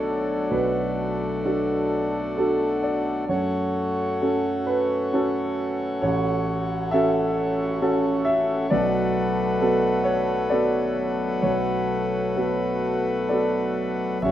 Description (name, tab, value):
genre	neoclassical piano and strings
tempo	65 BPM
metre	3/4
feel	rubato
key	unclear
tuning	A4 = 442 Hz
part	warm concert grand piano	accompaniment	0.0-14.3 s	A1 to E5	-23 LUFS	right 1 dB	none
part	pedal harmonium	sustained chords	0.0-14.3 s	G#3 to C#5	-25 LUFS	left 2 dB	none
part	rich double bass	bass	14.2-14.3 s	F#1	-31 LUFS	equal	none
room	light reverb, small room ambience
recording	rough home demo mix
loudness	-21 LUFS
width	side -12 dB against mid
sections	0.0-14.2 A section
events	none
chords	0.0 Bm7; 3.3 F#m; 6.0 A6; 8.7 Bm7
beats	| 0.52 1.44 2.36 | 3.29 4.21 5.12 | 6.03 6.92 7.81 | 8.71 9.60 10.50 | 11.42 12.36 13.29 | 14.23